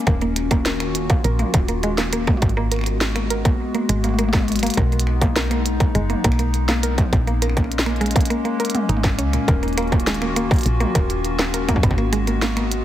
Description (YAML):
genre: IDM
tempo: 102 BPM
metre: 4/4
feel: straight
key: unclear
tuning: A4 = 440 Hz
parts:
  - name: warbly tape-like pad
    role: sustained chords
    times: 0.0-12.8 s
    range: Eb3 to Gb4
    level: -25 LUFS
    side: left 3 dB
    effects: chorus, built-in reverb, vintage 12-bit sampler grit
  - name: mallet-like synth pluck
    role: arpeggios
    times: 0.0-12.7 s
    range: Bb2 to Bb4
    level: -25 LUFS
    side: right 2 dB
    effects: chorus, tape echo
  - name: woody FM bass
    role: bass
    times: 0.1-12.8 s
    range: Eb1 to Db2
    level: -23 LUFS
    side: equal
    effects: none
  - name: electronic kick drum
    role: drums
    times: 0.1-12.0 s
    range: none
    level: -19 LUFS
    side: equal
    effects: distortion
  - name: glitchy drum kit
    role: drums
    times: 0.1-12.8 s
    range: finger snaps, hi-hat, snare drum, toms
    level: -25 LUFS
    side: right 1 dB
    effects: overdrive
room: light reverb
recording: heavily compressed radio sound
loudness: -17 LUFS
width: side -12 dB against mid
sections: 0.0-12.8 A section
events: none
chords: 0.1 Ebm7; 2.4 Abm9; 4.8 B6; 7.1 Bbm7; 9.5 Ebm7; 11.8 Abm9